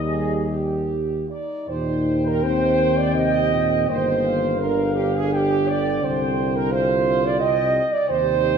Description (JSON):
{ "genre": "classical, hymn-like piece for brass band", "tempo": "72-88 BPM", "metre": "3/4", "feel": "rubato", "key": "Eb major", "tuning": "A4 = 440 Hz", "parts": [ { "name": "mellow flugelhorn", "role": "melody", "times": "0.0-8.6 s", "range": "Eb5 to G5", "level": "-30 LUFS", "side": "left 5 dB", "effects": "none" }, { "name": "dark euphonium", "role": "accompaniment", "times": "0.0-8.6 s", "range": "G3 to F4", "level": "-27 LUFS", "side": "left 2 dB", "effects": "none" }, { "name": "mellow trombone", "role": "accompaniment", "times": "0.0-8.6 s", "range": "Bb2 to G3", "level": "-30 LUFS", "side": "right 2 dB", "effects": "none" }, { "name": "mellow tuba", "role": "bass", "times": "0.0-8.6 s", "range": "G1 to Eb2", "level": "-25 LUFS", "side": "equal", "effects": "none" }, { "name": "mellow French horn section", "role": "second line", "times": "0.1-8.6 s", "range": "Eb4 to Eb5", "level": "-21 LUFS", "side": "right 4 dB", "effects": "none" } ], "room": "wet scoring stage reverb, RT60 1.7 s", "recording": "none", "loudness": "-18 LUFS", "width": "side -6 dB against mid", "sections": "0.0-1.7 A section; 1.7-8.6 B section", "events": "none", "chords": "0.0 Eb; 3.9 Eb/G; 6.0 C5" }